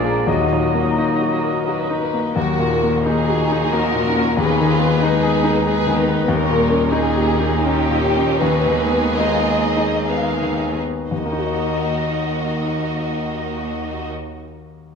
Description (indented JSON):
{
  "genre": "classical",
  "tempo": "54-96 BPM",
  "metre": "3/4",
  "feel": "rubato",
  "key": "Eb minor",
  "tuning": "A4 = 441 Hz",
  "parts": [
    { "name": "clear baby grand piano", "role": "melody", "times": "0.0-14.9 s", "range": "Eb2 to F5", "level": "-20 LUFS", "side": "left 3 dB", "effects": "none" },
    { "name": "dark studio violin section", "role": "melody", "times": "0.0-14.1 s", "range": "Gb4 to F5", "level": "-24 LUFS", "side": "left 1 dB", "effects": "none" },
    { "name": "clear clarinet", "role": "second line", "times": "0.0-2.0 s", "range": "Gb4 to Ab4", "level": "-29 LUFS", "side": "left 2 dB", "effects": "none" },
    { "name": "clear oboe", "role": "second line", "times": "0.0-2.0 s", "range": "D5 to Eb5", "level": "-28 LUFS", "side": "right 3 dB", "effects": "none" },
    { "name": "mellow large flute ensemble", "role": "second line", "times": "0.0-2.0 s", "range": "Bb5", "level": "-28 LUFS", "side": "left 1 dB", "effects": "none" },
    { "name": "warm studio violin section", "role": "second line", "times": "0.0-14.1 s", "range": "Bb3 to Cb5", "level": "-25 LUFS", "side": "equal", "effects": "none" },
    { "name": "dark bassoon", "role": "accompaniment", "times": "0.0-2.0 s", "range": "F3 to Gb3", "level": "-29 LUFS", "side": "equal", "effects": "none" },
    { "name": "dark studio viola section", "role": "accompaniment", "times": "0.0-14.1 s", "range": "Eb3 to Eb4", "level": "-27 LUFS", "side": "right 3 dB", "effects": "none" },
    { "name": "dark French horn section", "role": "sustained chords", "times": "0.0-2.0 s", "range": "Gb3 to Eb4", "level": "-27 LUFS", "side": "left 3 dB", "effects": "none" },
    { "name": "dark studio double bass section", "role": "bass", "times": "0.0-0.9 s", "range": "Bb1 to Eb2", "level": "-30 LUFS", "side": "right 4 dB", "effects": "none" },
    { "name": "rich studio cello section", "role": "bass", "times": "0.0-14.1 s", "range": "Eb2 to Bb2", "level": "-25 LUFS", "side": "right 2 dB", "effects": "none" }
  ],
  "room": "wet scoring stage reverb, RT60 1.6 s",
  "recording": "none",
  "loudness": "-16 LUFS",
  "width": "side -6 dB against mid",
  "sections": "0.0-2.4 A section; 2.4-11.1 B section; 11.1-14.9 C section",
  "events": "slowing down 5.3-11.1",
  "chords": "0.3 Ebm; 4.4 Abm/Eb; 6.3 Eb7; 8.4 Abm/Eb; 11.1 Ebm",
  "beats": "| 0.27 0.97 1.66 | 2.36 3.04 3.72 | 4.37 5.00 5.64 | 6.27 6.92 7.64 | 8.41 9.19 10.08 | 11.11 12.03 12.98 | 13.90 14.83"
}